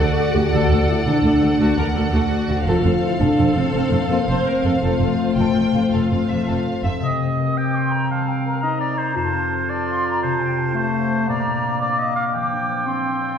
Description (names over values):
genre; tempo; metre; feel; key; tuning
cinematic; 112 BPM (dotted quarters); 12/8; straight; C dorian from 7.0 s; A4 = 445 Hz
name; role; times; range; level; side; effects
warm symphonic violin section; melody; 0.0-7.0 s; E5 to G5; -28 LUFS; left 1 dB; none
dark symphonic violin section; second line; 0.0-6.9 s; F4 to D5; -26 LUFS; left 2 dB; none
clear symphonic viola section; accompaniment; 0.0-6.7 s; F4 to C5; -28 LUFS; right 1 dB; none
dark French horn section; sustained chords; 0.0-6.8 s; A3 to A4; -21 LUFS; left 2 dB; none
concert harp; arpeggios; 0.0-13.4 s; F2 to F5; -26 LUFS; left 3 dB; none
warm symphonic cello section; bass; 0.0-6.9 s; D2 to F2; -24 LUFS; right 1 dB; none
warm symphonic double bass section; bass; 0.0-6.9 s; F1 to D2; -23 LUFS; right 2 dB; none
clear oboe; second line; 7.0-13.4 s; C5 to G5; -25 LUFS; right 2 dB; none
small flute group; second line; 7.0-13.4 s; G5 to Eb6; -26 LUFS; left 1 dB; none
warm clarinet; second line; 7.0-13.4 s; A3 to F4; -25 LUFS; equal; none
room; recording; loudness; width
wet scoring stage reverb, RT60 1.7 s; heard from further back in the room; -17 LUFS; side -7 dB against mid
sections
0.0-7.0 A section; 7.0-13.4 B section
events
none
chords
0.0 D; 2.7 F; 7.0 Cm7; 9.2 F; 11.3 Bbadd9